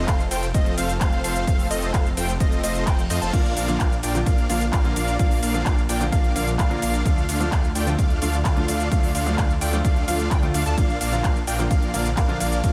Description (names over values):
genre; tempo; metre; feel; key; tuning
EDM, festival progressive house; 129 BPM; 4/4; straight; Bb major; A4 = 439 Hz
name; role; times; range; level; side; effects
lush unison pad; sustained chords; 0.0-12.7 s; D3 to A4; -36 LUFS; equal; none
plucky unison lead; arpeggios; 0.0-12.7 s; Eb5 to A5; -33 LUFS; equal; vintage 12-bit sampler grit, sidechain pumping, tape echo
big supersaw lead; riff; 0.0-12.7 s; A3 to A5; -30 LUFS; equal; sidechain pumping, tape echo
detuned saw bass; bass; 0.0-12.7 s; F1 to F2; -29 LUFS; equal; sidechain pumping
big-room dance drum kit; drums; 0.1-12.7 s; cabasa, crash cymbal, handclaps, hi-hat, ride cymbal; -33 LUFS; equal; overdrive
electronic kick drum; drums; 0.1-12.7 s; none; -23 LUFS; equal; none
reverse cymbal; sound effects; 2.9-3.3 s; none; -42 LUFS; equal; none
warm grand piano; accompaniment; 3.3-12.7 s; D3 to F4; -32 LUFS; equal; sidechain pumping, tape echo
room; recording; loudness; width
light reverb; none; -22 LUFS; mono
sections
0.0-12.7 A section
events
reverse cymbal 2.9-3.3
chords
0.0 F; 3.3 Bb; 7.1 Dm; 10.8 Bb